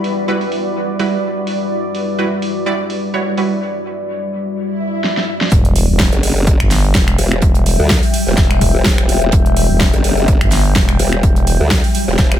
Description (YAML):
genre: bass house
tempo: 126 BPM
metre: 4/4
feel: swing 55% on 16ths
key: E minor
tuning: A4 = 441 Hz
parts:
  - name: deep dark ambient pad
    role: sustained chords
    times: 0.0-12.4 s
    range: F#3 to E5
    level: -20 LUFS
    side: left 2 dB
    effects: chorus, built-in reverb, sidechain pumping
  - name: orchestra-hit-like synth stab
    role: stabs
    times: 0.0-3.6 s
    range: G3 to D5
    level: -21 LUFS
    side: right 4 dB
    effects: built-in reverb, sidechain pumping, dub echo
  - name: big-room dance drum kit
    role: drums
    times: 0.0-12.4 s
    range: finger snaps, hi-hat, snare drum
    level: -20 LUFS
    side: right 1 dB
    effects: low-pass filter on hats, low-pass filter on snare, low-pass filter on room
  - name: granular cloud pad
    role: texture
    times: 0.0-12.4 s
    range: E4 to G5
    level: -28 LUFS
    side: equal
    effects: built-in reverb, sidechain pumping
  - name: swell and sub drop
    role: sound effects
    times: 4.8-7.4 s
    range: none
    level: -23 LUFS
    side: equal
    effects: none
  - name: growling FM bass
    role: bass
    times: 5.5-11.6 s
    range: E1 to G1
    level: -15 LUFS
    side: equal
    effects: overdrive, sidechain pumping
  - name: electronic kick drum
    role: drums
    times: 5.5-12.3 s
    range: none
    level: -14 LUFS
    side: equal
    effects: overdrive
  - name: open jazz drum kit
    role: drums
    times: 5.5-12.3 s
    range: hi-hat, snare drum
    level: -29 LUFS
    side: right 4 dB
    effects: none
  - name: formant-sweep wobble bass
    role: bass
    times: 6.1-12.4 s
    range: E1 to D2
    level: -16 LUFS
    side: equal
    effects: chorus, overdrive, sidechain pumping
room: digital ambience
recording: none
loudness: -12 LUFS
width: side -11 dB against mid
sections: 0.0-5.5 A section; 5.5-12.4 B section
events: swell 4.8-5.5; drum fill 5.0-5.5; drop 5.5-12.4; impact 5.5-7.4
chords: 0.0 Emadd9